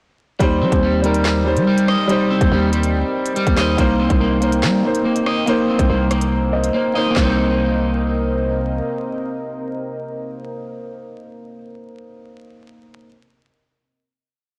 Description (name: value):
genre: hip hop, drill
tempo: 142 BPM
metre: 4/4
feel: half-time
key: C minor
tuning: A4 = 440 Hz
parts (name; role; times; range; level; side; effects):
- dark grand piano; accompaniment; 0.4-13.1 s; G3 to Eb5; -23 LUFS; equal; none
- deep dark ambient pad; sustained chords; 2.6-11.3 s; C3 to G5; -33 LUFS; equal; chorus, built-in reverb
- electric guitar at the edge of break-up; arpeggios; 0.4-11.7 s; G3 to Eb5; -25 LUFS; equal; lush chorus, digital delay
- growling 808-style bass; bass; 0.4-8.8 s; C2 to G3; -22 LUFS; equal; none
- drill drum kit; drums; 0.4-7.3 s; handclaps, hi-hat, kick drum, rim click, snare drum; -23 LUFS; equal; none
room: light reverb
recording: blown-out, overdriven recording, vinyl crackle, overdrive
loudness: -18 LUFS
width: mono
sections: 0.4-7.2 hook; 7.2-10.5 final chord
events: grand piano fill 6.3-7.2; silent gap 6.7-7.2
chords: 0.4 Eb6; 3.8 Cm7